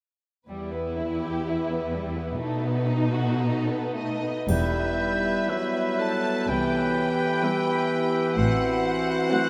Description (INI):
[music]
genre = classical, slow romantic movement for symphony orchestra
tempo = 53-65 BPM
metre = 4/4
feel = rubato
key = E minor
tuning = A4 = 440 Hz
[part]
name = rich studio violin section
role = melody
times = 0.5-9.5 s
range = A4 to A5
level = -35 LUFS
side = equal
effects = none
[part]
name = warm studio violin section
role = second line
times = 0.5-9.5 s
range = G3 to G4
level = -35 LUFS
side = equal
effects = none
[part]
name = rich studio viola section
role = accompaniment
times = 0.5-9.5 s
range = E3 to E4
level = -37 LUFS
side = equal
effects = none
[part]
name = rich studio cello section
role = bass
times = 0.5-9.1 s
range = E2 to C3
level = -31 LUFS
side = equal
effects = none
[part]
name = warm clarinet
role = second line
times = 4.0-9.5 s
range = D#4 to A4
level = -34 LUFS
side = equal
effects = none
[part]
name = clear oboe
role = second line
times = 4.5-9.5 s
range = B4 to C5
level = -35 LUFS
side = equal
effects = none
[part]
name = silver concert flute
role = second line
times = 4.5-9.5 s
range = E6 to G6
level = -34 LUFS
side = equal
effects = none
[part]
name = mellow bassoon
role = accompaniment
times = 4.5-9.5 s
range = E3 to G3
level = -31 LUFS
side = equal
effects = none
[part]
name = dark French horn section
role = sustained chords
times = 4.5-9.5 s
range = E3 to C4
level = -31 LUFS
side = equal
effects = none
[part]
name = bright studio double bass section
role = bass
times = 4.5-9.1 s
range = E1 to C2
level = -31 LUFS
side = equal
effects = none
[part]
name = triangle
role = percussion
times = 4.5-6.4 s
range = none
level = -50 LUFS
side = equal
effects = none
[sound]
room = wet huge ambient reverb, RT60 8.9 s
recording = in a vast, echoing space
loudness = -25 LUFS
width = mono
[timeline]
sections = 0.5-4.5 A section; 4.5-9.5 B section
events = none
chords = 0.5 Em; 2.4 B7; 4.5 Em; 6.5 Cmaj7; 8.4 F#m7b5/A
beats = | 0.48 1.46 2.41 3.42 | 4.50 5.50 6.49 7.45 | 8.38 9.32